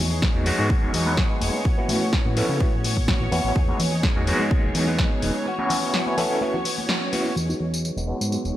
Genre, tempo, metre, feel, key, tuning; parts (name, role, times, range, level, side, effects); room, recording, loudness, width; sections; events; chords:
filtered disco house; 126 BPM; 4/4; straight; E major; A4 = 442 Hz
string machine, full ensemble; sustained chords; 0.0-8.6 s; C#5 to C#6; -32 LUFS; equal; ensemble chorus, sidechain pumping, low-pass filter
direct-recorded clean electric guitar; riff; 0.0-8.6 s; E3 to G#4; -31 LUFS; equal; ensemble chorus, sidechain pumping, low-pass filter
fat analog bass; bass; 0.0-8.5 s; E1 to C#3; -25 LUFS; equal; sidechain pumping, low-pass filter
maracas and congas; percussion; 0.1-7.3 s; -34 LUFS; left 2 dB; sidechain pumping on perc, low-pass filter on perc
electronic kick drum; drums; 0.2-5.1 s; -22 LUFS; equal
punchy analog drum machine; drums; 0.2-8.5 s; hi-hat, snare drum, tambourine; -28 LUFS; left 1 dB; sidechain pumping on hats, sidechain pumping on perc
overdriven tine electric piano; accompaniment; 0.3-8.6 s; G#3 to B4; -26 LUFS; equal; medium tremolo, phaser, vintage 12-bit sampler grit, sidechain pumping, low-pass filter
light reverb; -20 LUFS; side -13 dB against mid
0.0-7.4 A section; 7.4-8.6 B section
band accent 6.9; filter sweep 7.4-8.6
0.0 Emaj9; 1.7 A69; 3.6 Emaj9; 5.5 A69 (rootless); 7.4 Emaj9